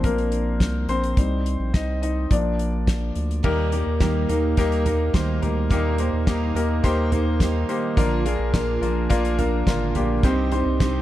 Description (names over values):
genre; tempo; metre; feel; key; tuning
piano-driven pop; 106 BPM; 4/4; straight; Eb major; A4 = 440 Hz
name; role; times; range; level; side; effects
clear grand piano; accompaniment; 0.0-11.0 s; G2 to Eb5; -24 LUFS; left 2 dB; none
saturated sub bass; bass; 0.0-11.0 s; Ab1 to Eb2; -24 LUFS; equal; none
damped 70s drum kit; drums; 0.0-10.9 s; crash cymbal, hi-hat, kick drum, snare drum, toms; -22 LUFS; equal; none
picked steel-string acoustic guitar; riff; 3.4-11.0 s; Bb2 to Bb4; -28 LUFS; right 8 dB; none
room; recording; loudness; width
small room reverb; dark, warm production; -20 LUFS; side -14 dB against mid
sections
0.0-3.4 A section; 3.4-11.0 B section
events
grand piano solo 0.0-3.4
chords
0.0 Bb; 1.2 Cm; 2.3 Bb; 3.4 Eb; 8.0 Bb; 10.2 Cm